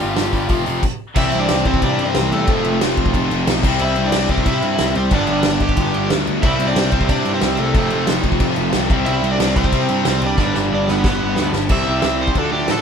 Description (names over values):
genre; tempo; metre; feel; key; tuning
punk rock; 182 BPM; 4/4; straight; C major; A4 = 440 Hz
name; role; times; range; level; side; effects
cranked stack guitar; melody; 0.0-12.8 s; A3 to G5; -22 LUFS; right 2 dB; overdrive
distorted electric guitar; riff; 0.0-12.8 s; F2 to D4; -21 LUFS; left 1 dB; overdrive
fuzz picked electric bass; bass; 0.0-12.8 s; F1 to C3; -23 LUFS; equal; overdrive
loose indie drum kit; drums; 0.0-12.8 s; crash cymbal, hi-hat, kick drum, snare drum; -20 LUFS; equal; none
thick fuzz guitar; riff; 1.2-12.8 s; G2 to G4; -23 LUFS; equal; distortion
room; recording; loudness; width
light reverb; band playing live in one room; -15 LUFS; side -7 dB against mid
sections
0.0-1.2 A section; 1.2-11.7 B section; 11.7-12.8 C section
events
stop 0.8-1.2; drum fill 10.4-11.7; overdriven electric guitar solo 11.7-12.8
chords
0.0 G5; 0.5 F5; 0.8 N.C.; 1.2 C; 2.5 F; 3.6 C; 5.1 G; 6.4 C; 7.8 F; 8.9 C; 10.4 G; 11.7 C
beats
0.18 0.51 0.84 | 1.17 1.50 1.83 2.16 | 2.48 2.81 3.15 3.47 | 3.80 4.13 4.46 4.79 | 5.12 5.45 5.78 6.11 | 6.44 6.77 7.10 7.43 | 7.76 8.09 8.42 8.75 | 9.08 9.40 9.73 10.06 | 10.39 10.72 11.05 11.38 | 11.70 12.03 12.36 12.69